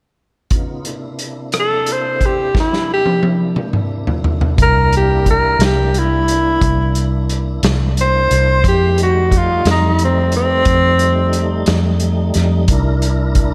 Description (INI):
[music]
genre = slow blues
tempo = 59 BPM (dotted quarters)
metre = 12/8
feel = straight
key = C mixolydian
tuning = A4 = 439 Hz
[part]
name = tonewheel organ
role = sustained chords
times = 0.5-13.5 s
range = C3 to Bb4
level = -27 LUFS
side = equal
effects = slow rotary speaker, overdrive, chorus vibrato
[part]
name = vintage drum kit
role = drums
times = 0.5-13.5 s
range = hi-hat, kick drum, rim click, snare drum, toms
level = -20 LUFS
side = equal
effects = none
[part]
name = warm tenor saxophone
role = melody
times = 1.6-11.7 s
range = C4 to C5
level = -18 LUFS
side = equal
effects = none
[part]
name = vintage muted fingered electric bass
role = bass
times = 4.6-13.5 s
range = C2 to F2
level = -18 LUFS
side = equal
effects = none
[sound]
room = moderate concert hall reverb, RT60 2.3 s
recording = big arena sound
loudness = -15 LUFS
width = mono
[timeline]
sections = 0.5-4.6 A section; 4.6-13.5 B section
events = drum fill 2.5-4.6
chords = 0.5 C7; 4.6 C9; 8.6 F9; 12.7 C9